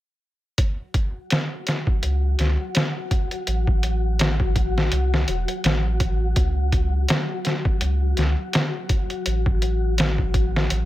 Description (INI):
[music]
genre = trip hop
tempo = 83 BPM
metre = 4/4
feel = swing 56% on 16ths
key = unclear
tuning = A4 = 440 Hz
[part]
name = trip hop sampler-style drum kit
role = drums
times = 0.6-10.9 s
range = hi-hat, kick drum, snare drum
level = -22 LUFS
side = equal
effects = none
[part]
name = wind-like tuned noise texture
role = texture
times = 1.4-10.9 s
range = F#3 to F#4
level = -30 LUFS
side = left 4 dB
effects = built-in reverb
[part]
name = warm sub bass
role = bass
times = 2.0-10.9 s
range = E1 to C#2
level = -22 LUFS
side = equal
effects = none
[sound]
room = digital ambience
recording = none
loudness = -20 LUFS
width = side -15 dB against mid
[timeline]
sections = 0.6-10.9 A section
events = none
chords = 0.6 C#sus4; 3.5 N.C.; 6.4 C#sus4; 9.3 A5